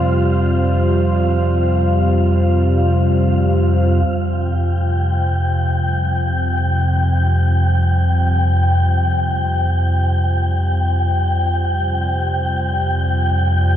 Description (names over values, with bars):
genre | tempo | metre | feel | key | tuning
dark ambient drone | free time | none | none | unclear | A4 = 439 Hz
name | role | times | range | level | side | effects
sweeping resonant pad | sustained chords | 0.0-13.8 s | C3 to C5 | -22 LUFS | equal | chorus
analog drone | drone | 0.0-13.8 s | F2 to C3 | -16 LUFS | equal | wide subtle chorus
wind-like tuned noise texture | texture | 0.0-13.8 s | F5 to G5 | -23 LUFS | left 1 dB | built-in reverb
room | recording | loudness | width
wet cathedral reverb, RT60 6.9 s | dark, warm production | -14 LUFS | side -10 dB against mid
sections
0.0-4.1 A section; 4.1-13.8 B section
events
filter sweep on synth drone 0.0-4.1, 4.1-13.8; fade-in on analog synth pad 4.1-13.8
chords
0.0 Fsus2